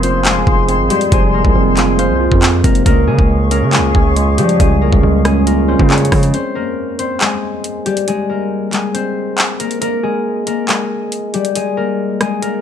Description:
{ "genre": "hip hop, drill", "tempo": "138 BPM", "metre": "4/4", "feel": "half-time", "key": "unclear", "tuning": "A4 = 439 Hz", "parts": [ { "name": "concert harp", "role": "melody", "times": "0.0-12.6 s", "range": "G3 to Db5", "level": "-17 LUFS", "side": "left 3 dB", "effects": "low-pass filter" }, { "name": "tine electric piano", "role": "accompaniment", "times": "0.0-6.4 s", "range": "Db3 to F5", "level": "-18 LUFS", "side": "right 6 dB", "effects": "phaser, low-pass filter" }, { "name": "mellow small flute group", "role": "sustained chords", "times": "0.0-6.3 s", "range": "Ab4 to Db6", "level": "-21 LUFS", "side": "left 4 dB", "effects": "none" }, { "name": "distorted 808-style bass", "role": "bass", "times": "0.0-6.3 s", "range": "F1 to F3", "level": "-16 LUFS", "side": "equal", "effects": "distortion" }, { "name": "drill drum kit", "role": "drums", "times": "0.0-12.5 s", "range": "handclaps, hi-hat, kick drum, rim click", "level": "-15 LUFS", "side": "equal", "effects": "vintage 12-bit sampler grit" } ], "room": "digital ambience", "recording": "none", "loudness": "-12 LUFS", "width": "side -8 dB against mid", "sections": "0.0-6.3 A section; 6.3-12.6 B section", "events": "break 6.3-12.6", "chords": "0.0 Fm; 2.9 Db; 6.3 Abmaj9; 9.8 N.C.", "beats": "0.25 0.69 | 1.12 1.55 1.99 2.42 | 2.86 3.29 3.73 4.16 | 4.60 5.03 5.47 5.90 | 6.34 6.77 7.21 7.64 | 8.08 8.51 8.95 9.38 | 9.82 10.25 10.69 11.12 | 11.55 11.99 12.43" }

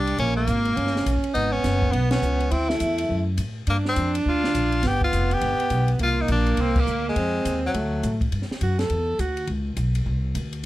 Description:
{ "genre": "jazz, small-group swing and bop", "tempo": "207 BPM", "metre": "4/4", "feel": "swing 62% on 8ths", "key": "unclear", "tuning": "A4 = 441 Hz", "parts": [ { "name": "clear tenor saxophone", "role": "melody", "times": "0.0-8.2 s", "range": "Gb3 to G4", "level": "-26 LUFS", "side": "left 2 dB", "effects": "none" }, { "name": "clear alto saxophone", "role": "second line", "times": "0.0-9.5 s", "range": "G3 to A4", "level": "-26 LUFS", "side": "right 2 dB", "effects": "none" }, { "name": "upright bass", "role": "bass", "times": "0.0-10.6 s", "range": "F1 to A2", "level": "-24 LUFS", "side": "equal", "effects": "none" }, { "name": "compact cocktail drum kit", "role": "drums", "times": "0.1-10.7 s", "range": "crash cymbal, hi-hat, kick drum, ride cymbal, snare drum", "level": "-31 LUFS", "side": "equal", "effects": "none" } ], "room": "little or no reverb", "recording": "close, detailed microphones", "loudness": "-21 LUFS", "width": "side -16 dB against mid", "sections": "0.0-8.3 A section; 8.3-10.7 B section", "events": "band accent 2.1, 6.7; alto saxophone solo 8.3-10.7", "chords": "0.2 Absus24; 0.8 Gdim; 1.4 Abm7; 2.5 D; 3.7 Gm7; 4.8 G7; 6.0 Csus2; 7.2 Fm7; 7.7 D; 8.3 Gsus2; 9.5 Bsus2; 10.1 Csus2", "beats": "| 0.19 0.48 0.77 1.06 | 1.35 1.64 1.93 2.22 | 2.51 2.80 3.09 3.38 | 3.67 3.96 4.25 4.54 | 4.83 5.12 5.41 5.70 | 6.00 6.29 6.58 6.87 | 7.16 7.45 7.74 8.03 | 8.31 8.61 8.90 9.19 | 9.48 9.77 10.06 10.35 | 10.64" }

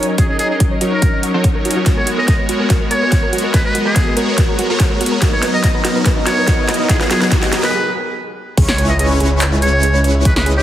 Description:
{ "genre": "future bass", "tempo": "143 BPM", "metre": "4/4", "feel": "half-time", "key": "G# minor", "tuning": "A4 = 440 Hz", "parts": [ { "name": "soft round pluck", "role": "arpeggios", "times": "0.0-10.6 s", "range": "F#4 to F#5", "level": "-24 LUFS", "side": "right 2 dB", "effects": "chorus, sidechain pumping, digital delay" }, { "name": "supersaw chords", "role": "riff", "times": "0.0-10.6 s", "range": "F#3 to F#5", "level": "-18 LUFS", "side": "equal", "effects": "sidechain pumping, low-pass filter" }, { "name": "big-room dance drum kit", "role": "drums", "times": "0.0-10.6 s", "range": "crash cymbal, handclaps, hi-hat, snare drum", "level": "-21 LUFS", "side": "equal", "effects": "overdrive, high-pass filter on hats, small room ambience, high-pass filter on snare, high-pass filter on cymbals" }, { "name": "trumpet with metal mute", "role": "melody", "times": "0.2-10.6 s", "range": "G#4 to D#5", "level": "-21 LUFS", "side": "equal", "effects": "sidechain pumping, digital delay" }, { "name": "electronic kick drum", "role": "drums", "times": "0.2-10.3 s", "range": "none", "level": "-15 LUFS", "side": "equal", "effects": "overdrive, small room ambience" }, { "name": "riser and sub drop", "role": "sound effects", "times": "3.8-10.3 s", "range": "none", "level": "-26 LUFS", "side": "right 1 dB", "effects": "none" }, { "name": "airy dreamy lead", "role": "arpeggios", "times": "8.6-10.6 s", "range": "C#6 to D#6", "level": "-29 LUFS", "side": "left 2 dB", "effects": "chorus, sidechain pumping" }, { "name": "wide detuned saw bass", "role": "bass", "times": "8.6-10.6 s", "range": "C#2", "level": "-15 LUFS", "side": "equal", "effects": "chorus, sidechain pumping" } ], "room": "moderate lush hall reverb, RT60 1.6 s", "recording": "heavily compressed radio sound", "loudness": "-12 LUFS", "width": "side -12 dB against mid", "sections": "0.0-8.6 A section; 8.6-10.6 B section", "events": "build-up 0.0-8.6; filter sweep on synth arpeggio sound 0.0-8.6; drum fill 1.9-7.7; riser 3.8-7.7; break 7.7-8.6; drop 8.6-10.6; impact 8.6-10.3", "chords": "0.0 D#m7; 1.9 G#m11; 5.2 Bmaj7; 8.6 C#m7", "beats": "| 0.18 0.60 1.02 1.44 | 1.86 2.28 2.70 3.12 | 3.54 3.96 4.38 4.80 | 5.22 5.64 6.06 6.48 | 6.90 7.32 7.74 8.16 | 8.58 8.99 9.41 9.83 | 10.25" }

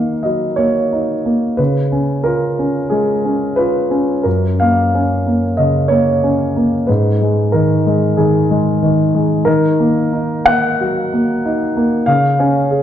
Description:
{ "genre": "neoclassical minimalist piano", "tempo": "92 BPM", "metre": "4/4", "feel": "rubato", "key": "F# major", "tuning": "A4 = 442 Hz", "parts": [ { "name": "dark concert grand piano", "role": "solo", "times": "0.0-12.8 s", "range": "F#2 to F#5", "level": "-13 LUFS", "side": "equal", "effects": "none" } ], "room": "wet recital hall reverb, RT60 1.7 s", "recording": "dark, warm production", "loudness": "-13 LUFS", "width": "side -10 dB against mid", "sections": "0.0-12.8 A section", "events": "none", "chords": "0.0 D#m; 1.6 C#; 4.3 F#; 6.9 G#m; 9.5 D#m; 12.1 C#", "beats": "0.26 0.92 | 1.59 2.26 2.92 3.57 | 4.25 4.93 5.57 6.23 | 6.88 7.53 8.18 8.82 | 9.46 10.13 10.80 11.44 | 12.07 12.71" }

